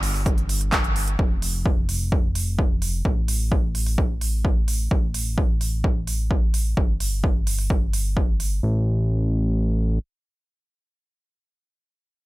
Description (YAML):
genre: EDM, festival progressive house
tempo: 129 BPM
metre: 4/4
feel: straight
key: unclear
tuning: A4 = 440 Hz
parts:
  - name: fat analog bass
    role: bass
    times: 0.0-10.0 s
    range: F1 to A1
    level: -24 LUFS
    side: equal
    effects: sidechain pumping
  - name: big-room dance drum kit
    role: drums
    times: 0.0-8.5 s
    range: handclaps, hi-hat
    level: -28 LUFS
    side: right 2 dB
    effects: none
  - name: electronic kick drum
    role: drums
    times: 0.3-8.3 s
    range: none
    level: -21 LUFS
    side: equal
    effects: none
room: little or no reverb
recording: none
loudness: -20 LUFS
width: side -19 dB against mid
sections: 0.0-8.6 A section; 8.6-12.3 B section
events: none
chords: none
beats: 0.26 0.72 | 1.19 1.66 2.12 2.59 | 3.05 3.52 3.98 4.45 | 4.91 5.38 5.84 6.31 | 6.77 7.24 7.70 8.17 | 8.63 9.10 9.56